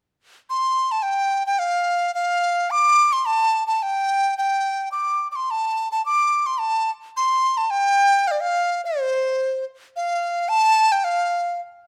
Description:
chinese traditional; 108 BPM; 2/4; rubato; C zhi mode; A4 = 442 Hz
mellow dizi; solo; 0.5-11.6 s; C5 to D6; -21 LUFS; equal
moderate recital hall reverb, RT60 1.4 s; close, detailed microphones; -21 LUFS; mono
0.0-1.1 A section; 1.1-10.0 B section; 10.0-11.9 C section
0.50 | 1.05 1.61 | 2.17 2.72 | 3.27 3.82 | 4.37 4.92 | 5.49 6.05 | 6.61 7.16 | 7.70 8.26 | 8.81 9.38 | 9.96 10.52 | 11.08

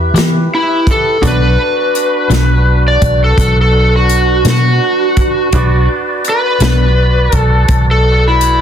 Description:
slow blues; 56 BPM (dotted quarters); 12/8; straight; B minor; A4 = 440 Hz
bright grand piano; accompaniment; 0.0-8.6 s; D4 to E5; -24 LUFS; right 6 dB
tonewheel organ; sustained chords; 0.0-8.6 s; D4 to D5; -20 LUFS; equal; slow rotary speaker
vintage muted fingered electric bass; bass; 0.0-8.6 s; B1 to E3; -11 LUFS; equal
electric guitar through a small old amp; accompaniment; 0.1-6.8 s; B2 to G4; -22 LUFS; left 8 dB; tremolo
natural country drum kit; drums; 0.2-8.6 s; hi-hat, kick drum, snare drum; -16 LUFS; equal
overdriven slide guitar; melody; 0.5-8.6 s; E4 to D5; -13 LUFS; equal
small room ambience; dense, heavily limited modern master; -9 LUFS; side -9 dB against mid
0.0-8.6 A section
0.0 Em; 1.2 Bm
0.14 | 1.22 2.30 3.38 4.46 | 5.54 6.62 7.69

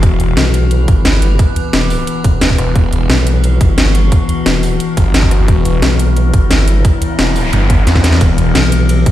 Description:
dark technical drum and bass; 176 BPM; 4/4; straight; E minor; A4 = 440 Hz
metallic inharmonic drone; sustained chords; 0.0-9.1 s; E3 to B4; -18 LUFS; left 4 dB; chorus, built-in reverb, phaser, vintage 12-bit sampler grit, sidechain pumping
snarling distorted saw bass; bass; 0.0-0.4, 2.6-8.5 s; E1 to E2; -12 LUFS; equal; distortion, overdrive
drum and bass drum kit; drums; 0.0-9.1 s; hi-hat, ride cymbal, rim click, snare drum; -17 LUFS; left 1 dB; overdrive, studio reverb
electronic kick drum; drums; 0.0-9.1 s; -12 LUFS; equal; overdrive, studio reverb
vowel-sweep wobble bass; bass; 0.4-9.1 s; E1 to B1; -12 LUFS; equal; chorus
noise sweep; sound effects; 7.0-8.2 s; -24 LUFS; right 1 dB
light reverb; played on a big sound system in a bare room, large studio reverb; -9 LUFS; side -13 dB against mid
0.0-9.1 A section
noise sweep 7.0-8.2; drum fill 7.9-8.2
0.0 Em
| 0.03 0.37 0.71 1.05 | 1.39 1.73 2.07 2.42 | 2.76 3.10 3.44 3.78 | 4.12 4.46 4.80 5.14 | 5.48 5.82 6.17 6.51 | 6.85 7.19 7.53 7.87 | 8.21 8.55 8.89

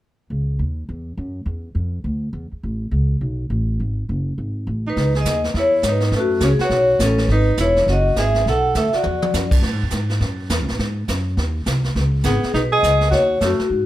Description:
jazz, small-group swing and bop; 206 BPM; 4/4; swing 62% on 8ths; C# minor; A4 = 441 Hz
upright bass; bass; 0.3-13.9 s; E1 to A2; -20 LUFS; equal
vibraphone with medium hard mallets; melody; 4.9-9.5, 12.2-13.9 s; F#4 to F#5; -19 LUFS; left 2 dB
breathy alto saxophone; second line; 4.9-9.5, 12.2-13.7 s; A3 to A4; -23 LUFS; right 3 dB
jazz brush drum kit; drums; 5.0-13.9 s; brushed snare drum, crash cymbal, hi-hat, kick drum, snare drum, toms; -24 LUFS; right 1 dB
light reverb; -17 LUFS; side -14 dB against mid
0.3-5.0 A section; 5.0-13.9 B section
drum fill 9.0, 13.7
0.3 C#madd9; 1.5 Dmadd9; 2.6 Aadd9; 3.8 F#madd9; 5.0 C#m9; 6.1 F#m; 6.7 Bsus2; 7.3 Emaj9; 8.5 Bm7; 9.0 Esus2; 9.6 Amaj7(no3); 10.8 G#7; 12.0 C#sus2; 13.1 D#m7b5
| 0.29 0.59 0.88 1.17 | 1.46 1.75 2.05 2.34 | 2.63 2.92 3.21 3.51 | 3.80 4.09 4.38 4.67 | 4.97 5.26 5.55 5.84 | 6.13 6.42 6.71 7.01 | 7.30 7.59 7.88 8.17 | 8.46 8.76 9.05 9.34 | 9.63 9.92 10.21 10.50 | 10.79 11.09 11.38 11.67 | 11.96 12.25 12.54 12.83 | 13.12 13.41 13.71

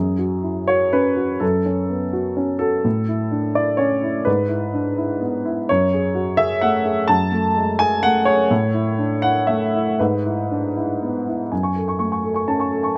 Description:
neoclassical minimalist piano; 126 BPM; 3/4; rubato; F# minor; A4 = 440 Hz
warm baby grand piano; solo; 0.0-13.0 s; F#2 to C#6; -20 LUFS; equal
little or no reverb; -20 LUFS; mono
0.0-11.5 A section; 11.5-13.0 B section
0.0 F#madd9; 2.9 A; 4.3 E/G#; 5.7 F#madd9; 8.5 A; 10.0 E/G#; 11.5 F#madd9
0.44 0.93 | 1.42 1.89 2.38 | 2.85 3.32 3.79 | 4.27 4.74 5.22 | 5.69 6.15 6.61 | 7.09 7.56 8.03 | 8.50 8.99 9.48 | 9.99 10.50 11.01 | 11.52 12.01 12.48 | 12.96

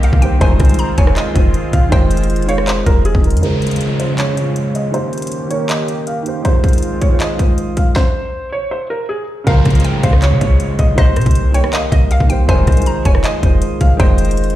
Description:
hip hop, trap; 159 BPM; 4/4; half-time; F minor; A4 = 440 Hz
felt-muted upright piano; melody; 0.0-14.5 s; Ab4 to F5; -22 LUFS; right 1 dB; low-pass filter, tape echo
hollow square pluck; second line; 0.0-3.4, 9.5-14.5 s; Eb5 to Bb5; -26 LUFS; left 3 dB; chorus, tape echo
dark baby grand piano; accompaniment; 0.0-14.6 s; Db3 to Eb5; -20 LUFS; right 2 dB; low-pass filter
warm analog pad; sustained chords; 0.0-7.9 s; Db3 to G4; -25 LUFS; left 2 dB; chorus, low-pass filter
clean 808-style bass; bass; 0.0-3.4, 9.5-14.6 s; F1 to Db3; -14 LUFS; equal
trap drum kit; drums; 0.0-14.6 s; handclaps, hi-hat, kick drum, rim click, snare drum; -15 LUFS; equal
clear brass ensemble; stabs; 0.4-0.8, 9.5-9.8, 12.5-12.8 s; C2 to F3; -26 LUFS; left 4 dB
downlifter; sound effects; 3.4-6.4, 9.5-12.5 s; -26 LUFS; left 1 dB
little or no reverb; played on a big sound system in a bare room, large studio reverb; -12 LUFS; side -14 dB against mid
0.0-3.4 A section; 3.4-9.5 B section; 9.5-14.6 A section
filter sweep 3.4-9.5; stop 8.0-9.5
0.4 Fm7; 3.4 Dbmaj7; 4.9 Cm7; 6.4 Fm7; 9.5 Dbmaj7; 11.0 Cm7; 12.5 Fm7
0.03 | 0.41 0.79 1.17 1.54 | 1.92 2.30 2.68 3.05 | 3.43 3.81 4.18 4.56 | 4.94 5.32 5.69 6.07 | 6.45 6.83 7.20 7.58 | 7.96 8.34 8.71 9.09 | 9.47 9.85 10.22 10.60 | 10.98 11.36 11.73 12.11 | 12.49 12.86 13.24 13.62 | 14.00 14.37

